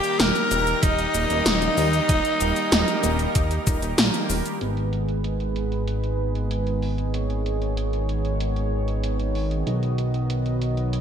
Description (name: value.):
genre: synthwave.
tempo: 95 BPM.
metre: 4/4.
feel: straight.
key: G# minor.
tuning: A4 = 441 Hz.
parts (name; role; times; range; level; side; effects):
raspy alto saxophone; melody; 0.0-4.0 s; D#4 to A#4; -25 LUFS; left 1 dB; digital delay.
string machine, violins; second line; 0.0-3.9 s; D#5 to A#5; -29 LUFS; equal; ensemble chorus, digital delay.
soft supersaw; sustained chords; 0.0-11.0 s; D#3 to D#5; -28 LUFS; right 2 dB; sidechain pumping, low-pass filter.
80s electronic pad drums; drums; 0.0-11.0 s; hi-hat, shaker, snare drum; -25 LUFS; equal; overdrive, low-pass filter on hats, low-pass filter on perc, low-pass filter on snare, gated reverb.
chorused synth bass; bass; 0.2-11.0 s; D#1 to D#2; -25 LUFS; equal; sidechain pumping.
electronic kick drum; drums; 0.8-3.8 s; none; -22 LUFS; equal; none.
room: moderate lush hall reverb, RT60 2.6 s.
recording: bright 1980s-style digital production.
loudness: -21 LUFS.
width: side -8 dB against mid.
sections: 0.0-4.6 A section; 4.6-11.0 B section.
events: none.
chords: 0.0 D#; 4.6 G#m; 9.7 B.